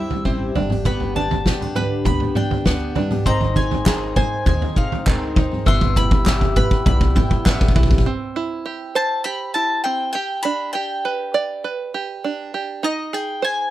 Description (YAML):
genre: indie folk with a building arrangement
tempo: 100 BPM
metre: 4/4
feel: straight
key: C major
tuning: A4 = 440 Hz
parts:
  - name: bowl-back mandolin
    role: melody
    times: 0.0-13.7 s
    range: Eb5 to C6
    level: -24 LUFS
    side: left 2 dB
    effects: none
  - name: fingerpicked steel-string acoustic guitar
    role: accompaniment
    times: 0.0-3.3 s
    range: G2 to G4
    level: -27 LUFS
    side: left 2 dB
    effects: none
  - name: picked twelve-string acoustic guitar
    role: accompaniment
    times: 0.0-8.1 s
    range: G2 to Ab4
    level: -28 LUFS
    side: left 6 dB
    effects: none
  - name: open-back banjo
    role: arpeggios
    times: 0.0-13.7 s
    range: B3 to D5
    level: -26 LUFS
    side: right 6 dB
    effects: none
  - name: loose indie drum kit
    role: drums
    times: 0.1-8.1 s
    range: kick drum, snare drum, toms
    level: -18 LUFS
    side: equal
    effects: none
  - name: upright bass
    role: bass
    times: 0.3-8.0 s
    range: G1 to Eb2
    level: -23 LUFS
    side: equal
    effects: none
  - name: glockenspiel with soft plastic mallets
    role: second line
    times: 3.3-7.7 s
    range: C6 to E6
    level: -31 LUFS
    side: left 5 dB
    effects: none
  - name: warm upright piano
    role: accompaniment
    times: 3.3-8.1 s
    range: G1 to E5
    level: -30 LUFS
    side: equal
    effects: none
  - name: group handclap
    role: percussion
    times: 3.9-7.6 s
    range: none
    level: -29 LUFS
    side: right 2 dB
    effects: none
room: little or no reverb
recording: none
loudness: -17 LUFS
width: side -14 dB against mid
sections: 0.0-8.1 A section; 8.1-13.7 B section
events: build-up 0.0-8.1; drum fill 0.0-8.1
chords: 0.0 C; 0.6 G; 3.3 Ab; 5.7 Em/G; 8.1 C; 10.2 G; 12.8 Ab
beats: 0.26 | 0.86 1.46 2.06 2.67 | 3.27 3.87 4.47 5.07 | 5.67 6.26 6.86 7.46 | 8.06 8.66 9.25 9.85 | 10.45 11.04 11.64 12.24 | 12.84 13.43